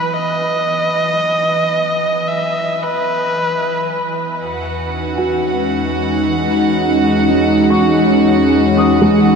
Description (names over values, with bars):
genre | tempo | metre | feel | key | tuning
ambient | 56 BPM | 4/4 | straight | E major | A4 = 440 Hz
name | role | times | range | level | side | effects
dark electric violin | melody | 0.0-4.4 s | B4 to E5 | -18 LUFS | equal | shimmer reverb, diffuse ambient delay
warm analog pad | sustained chords | 0.0-9.4 s | E2 to G#5 | -16 LUFS | left 1 dB | chorus, shimmer reverb
organ-like drone | drone | 0.0-9.4 s | E3 | -24 LUFS | right 1 dB | ensemble chorus, built-in reverb
rich chamber violin section | texture | 4.4-9.4 s | F#4 to F#5 | -20 LUFS | right 3 dB | shimmer reverb
felt-muted upright piano | arpeggios | 5.2-9.4 s | G#3 to D#6 | -19 LUFS | right 1 dB | shimmer reverb, diffuse ambient delay
room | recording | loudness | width
wet huge ambient reverb, RT60 8.7 s | none | -13 LUFS | side -5 dB against mid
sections
0.0-9.4 A section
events
none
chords
0.0 Emaj9; 4.4 B69/E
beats
| 0.12 1.19 2.26 3.33 | 4.40 5.47 6.54 7.62 | 8.69